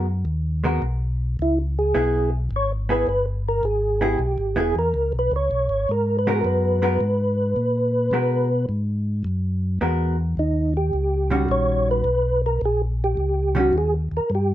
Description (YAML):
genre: jazz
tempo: 107 BPM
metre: 4/4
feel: swing 68% on 8ths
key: unclear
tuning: A4 = 440 Hz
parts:
  - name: hollow-body jazz guitar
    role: accompaniment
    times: 0.0-13.7 s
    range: D#3 to A#4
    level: -24 LUFS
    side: right 1 dB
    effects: none
  - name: mellow tonewheel organ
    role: bass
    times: 0.0-14.5 s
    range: E1 to B2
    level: -23 LUFS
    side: equal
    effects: slow rotary speaker
  - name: percussive tonewheel organ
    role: melody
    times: 1.4-14.5 s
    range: D#4 to C#5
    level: -22 LUFS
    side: right 1 dB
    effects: slow rotary speaker, chorus vibrato
room: little or no reverb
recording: none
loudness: -20 LUFS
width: side -13 dB against mid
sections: 0.0-14.5 A section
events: none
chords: 0.0 G#m7; 1.4 C#m7; 5.9 G#m9; 10.4 D#7#9